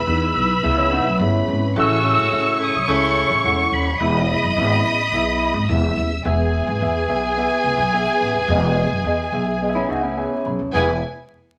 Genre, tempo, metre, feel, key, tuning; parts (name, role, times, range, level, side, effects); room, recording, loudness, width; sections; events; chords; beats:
soul; 107 BPM; 4/4; straight; E major; A4 = 439 Hz
tonewheel organ; melody; 0.0-5.7 s; B5 to E6; -23 LUFS; equal; chorus vibrato, slow rotary speaker
warm studio violin section; second line; 0.0-11.0 s; E4 to E6; -26 LUFS; equal
mellow tine electric piano; accompaniment; 0.0-11.0 s; E2 to B5; -26 LUFS; equal
upright bass; bass; 0.0-11.0 s; D#1 to E2; -25 LUFS; equal
electric guitar through a small old amp; riff; 0.8-1.7, 9.8-10.7 s; C#4 to F#4; -26 LUFS; equal; phaser
warm horn section; second line; 1.8-10.9 s; C#3 to G#4; -26 LUFS; equal
wet studio reverb, RT60 0.8 s; vinyl crackle; -19 LUFS; mono
0.0-6.2 A section; 6.2-10.7 B section
tine electric piano fill 9.6-10.7
0.0 E; 1.8 A; 4.0 E
0.07 0.64 1.20 | 1.76 2.32 2.88 3.44 | 4.00 4.57 5.13 5.69 | 6.25 6.81 7.37 7.93 | 8.49 9.06 9.62 10.18 | 10.74